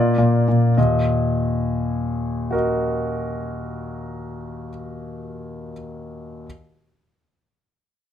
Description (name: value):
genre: classical-period piano sonatina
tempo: 69 BPM (dotted quarters)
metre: 6/8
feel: rubato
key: Eb minor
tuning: A4 = 442 Hz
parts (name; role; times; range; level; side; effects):
- clear concert grand piano; solo; 0.0-6.5 s; Eb2 to Eb5; -20 LUFS; left 1 dB; none
room: light reverb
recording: close, detailed microphones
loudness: -19 LUFS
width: side -10 dB against mid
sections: 0.8-4.2 A section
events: none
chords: 0.0 Bb; 0.8 Ebm